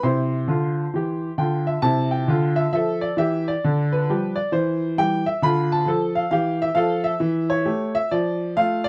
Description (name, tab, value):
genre	jazz, stride piano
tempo	133 BPM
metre	4/4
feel	swing 64% on 8ths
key	C major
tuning	A4 = 439 Hz
part	clear upright piano	solo	0.0-8.9 s	C3 to C6	-22 LUFS	equal	none
room	light reverb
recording	dry, close 1970s-style studio recording, faint mains hum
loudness	-22 LUFS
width	mono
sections	0.0-1.8 A section; 1.8-8.9 B section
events	none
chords	0.0 C; 3.6 G7/D; 4.5 C/E; 5.4 Dm; 7.2 A7/E; 8.1 Dm/F